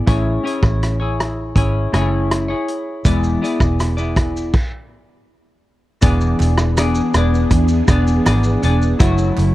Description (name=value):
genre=indie pop, bedroom pop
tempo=81 BPM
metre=4/4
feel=straight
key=unclear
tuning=A4 = 438 Hz
part: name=semi-hollow electric guitar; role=accompaniment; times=0.0-9.5 s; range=E3 to D5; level=-19 LUFS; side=left 1 dB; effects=analog chorus, warbly pitch drift
part: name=vintage muted fingered electric bass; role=bass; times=0.1-9.5 s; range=E1 to E2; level=-17 LUFS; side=equal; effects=none
part: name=loose indie drum kit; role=drums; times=0.1-9.5 s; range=crash cymbal, hi-hat, kick drum, rim click, shaker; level=-18 LUFS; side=equal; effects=none
part: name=string machine, violas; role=sustained chords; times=6.0-9.5 s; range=E3 to A4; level=-23 LUFS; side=equal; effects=ensemble chorus
part: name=group handclap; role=percussion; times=6.4-9.5 s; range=none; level=-35 LUFS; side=right 5 dB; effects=none
room=studio reverb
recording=dry, close 1970s-style studio recording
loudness=-14 LUFS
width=side -16 dB against mid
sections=0.0-6.0 A section; 6.0-9.5 B section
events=stop 4.5-6.0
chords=0.1 Amaj7; 3.1 E7; 9.0 F#m7